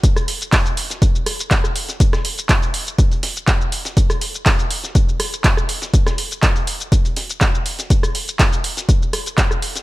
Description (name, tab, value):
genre	house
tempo	122 BPM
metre	4/4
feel	straight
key	none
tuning	none
part	dusty soul sampler-style drum kit	drums	0.0-9.8 s	hi-hat, snare drum	-30 LUFS	left 1 dB	sidechain pumping on hats, high-pass filter on hats, high-pass filter on snare
part	electronic kick drum	drums	0.0-9.5 s	none	-16 LUFS	equal	none
part	punchy analog drum machine	drums	0.0-9.8 s	handclaps, hi-hat, rim click, shaker	-21 LUFS	right 1 dB	none
room	digital ambience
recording	none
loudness	-15 LUFS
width	side -18 dB against mid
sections	0.0-9.8 A section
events	none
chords	none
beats	| 0.04 0.53 1.02 1.51 | 2.00 2.49 2.99 3.48 | 3.97 4.46 4.95 5.45 | 5.94 6.43 6.92 7.41 | 7.90 8.39 8.89 9.38